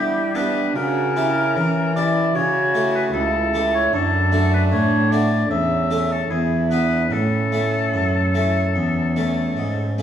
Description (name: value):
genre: classical, baroque-style sonata movement with continuo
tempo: 75 BPM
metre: 4/4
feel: straight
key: A major from 3.9 s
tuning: A4 = 440 Hz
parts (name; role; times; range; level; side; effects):
- warm oboe; melody; 0.0-10.0 s; G4 to E5; -23 LUFS; left 4 dB; none
- dark violin; second line; 0.0-9.9 s; C#4 to F#4; -24 LUFS; right 4 dB; none
- harpsichord; accompaniment; 0.0-10.0 s; C#2 to A4; -25 LUFS; left 1 dB; none
- warm cello; bass; 0.0-10.0 s; C#2 to G3; -22 LUFS; equal; none
room: wet recital hall reverb, RT60 1.3 s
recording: recorded in a church or concert hall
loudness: -17 LUFS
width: side -9 dB against mid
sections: 0.0-10.0 A section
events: none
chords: 0.0 Em7; 0.8 C#dim7; 2.4 A7/C#; 3.9 D/F#; 5.5 A/E; 6.3 E7; 7.1 A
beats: | 0.76 1.56 2.35 3.15 | 3.94 4.73 5.52 6.32 | 7.13 7.95 8.76 9.57